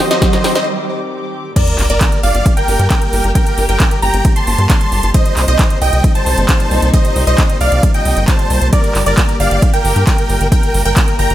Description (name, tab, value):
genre	uplifting trance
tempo	134 BPM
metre	4/4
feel	straight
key	G minor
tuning	A4 = 439 Hz
part	dense compressed supersaw	melody	0.0-11.3 s	Bb4 to C6	-18 LUFS	right 1 dB	sidechain pumping, digital delay
part	wide unison pluck	second line	0.0-11.3 s	D5 to C6	-23 LUFS	right 1 dB	lush chorus, sidechain pumping
part	dark studio string section	sustained chords	0.0-11.3 s	Bb2 to D6	-23 LUFS	left 2 dB	sidechain pumping
part	wide unison pluck	arpeggios	0.0-0.6 s	G4 to G5	-25 LUFS	right 2 dB	none
part	big-room dance drum kit	drums	0.0-11.3 s	crash cymbal, handclaps, hi-hat, ride cymbal, snare drum	-21 LUFS	right 1 dB	high-pass filter on snare, small room ambience, high-pass filter on hats, high-pass filter on cymbals
part	riser and sub drop	sound effects	0.0-3.4 s	none	-22 LUFS	right 1 dB	none
part	electronic kick drum	drums	0.2-11.1 s	none	-13 LUFS	equal	overdrive, small room ambience
part	tight sequencer bass	bass	1.8-11.3 s	G1 to G2	-14 LUFS	equal	sidechain pumping
room	light reverb, digital ambience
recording	none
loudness	-11 LUFS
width	side -13 dB against mid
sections	0.0-1.6 A section; 1.6-11.3 B section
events	build-up 0.0-1.6; drum fill 0.0-0.7; riser 0.0-0.7; break 0.7-1.6; drop 1.6-11.3; impact 1.6-3.4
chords	0.0 Cmadd9; 1.6 Gm; 5.1 Cmadd9; 8.7 Gm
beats	0.22 0.67 1.12 | 1.56 2.01 2.46 2.91 | 3.35 3.80 4.25 4.70 | 5.15 5.59 6.04 6.49 | 6.94 7.38 7.83 8.28 | 8.73 9.18 9.62 10.07 | 10.52 10.97